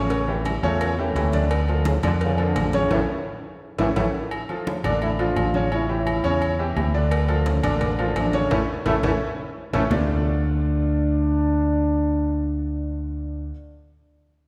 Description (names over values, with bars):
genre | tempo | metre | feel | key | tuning
latin, salsa | 172 BPM | 4/4 | straight | D harmonic minor from 4.3 s | A4 = 442 Hz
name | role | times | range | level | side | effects
warm trombone section | melody | 0.0-13.5 s | A2 to F4 | -28 LUFS | equal | none
bright upright piano | accompaniment | 0.0-13.5 s | C#3 to D5 | -29 LUFS | equal | none
fingered electric bass | bass | 0.0-13.5 s | A1 to F2 | -27 LUFS | equal | none
agogo bells and timbales | percussion | 0.1-10.0 s | none | -34 LUFS | equal | none
congas | percussion | 0.1-10.0 s | none | -34 LUFS | equal | none
cowbell and bongos | percussion | 0.1-4.0, 7.1-10.0 s | none | -35 LUFS | equal | none
room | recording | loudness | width
wet scoring stage reverb, RT60 2.0 s | recorded in a church or concert hall | -23 LUFS | mono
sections
0.0-4.3 A section; 4.3-9.9 B section; 9.9-12.7 C section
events
drum fill 2.9-4.3, 9.0-9.9; band accent 2.9-4.3, 8.5-9.9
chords
0.1 A7; 1.5 Dm; 2.9 A; 4.3 Dm; 5.7 A7; 7.1 Dm; 8.5 A; 9.9 Dm